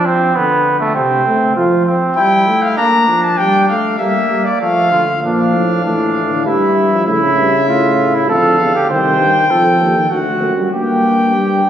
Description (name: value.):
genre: classical, imitative canzona for brass ensemble.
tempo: 98 BPM.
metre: 3/4.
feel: straight.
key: D minor.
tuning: A4 = 439 Hz.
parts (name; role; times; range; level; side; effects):
dark trumpet; second line; 0.0-11.7 s; A3 to C5; -16 LUFS; right 3 dB; none.
mellow euphonium; accompaniment; 0.0-11.7 s; C3 to Bb3; -18 LUFS; equal; none.
clear cornet; melody; 2.2-11.7 s; D5 to Bb5; -16 LUFS; left 2 dB; none.
warm tuba; bass; 5.2-11.7 s; C2 to Bb2; -18 LUFS; equal; none.
room: wet church reverb, RT60 2.8 s.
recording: recorded on a phone in the room, club reverb.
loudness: -11 LUFS.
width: side -10 dB against mid.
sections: 0.0-5.2 A section; 5.2-11.7 B section.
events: none.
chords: 0.0 Dm/F; 1.0 Am/C; 1.6 Fmaj9; 2.8 Bb; 3.4 Gm; 4.6 Dm/F; 5.2 Bb; 6.5 Em/G; 7.1 A; 8.3 Dm/F; 8.9 Adim/C; 10.1 D; 10.7 Gm.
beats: 0.35 0.95 | 1.56 2.17 2.78 | 3.39 4.00 4.61 | 5.23 5.84 6.46 | 7.07 7.68 8.29 | 8.90 9.50 10.11 | 10.73 11.35.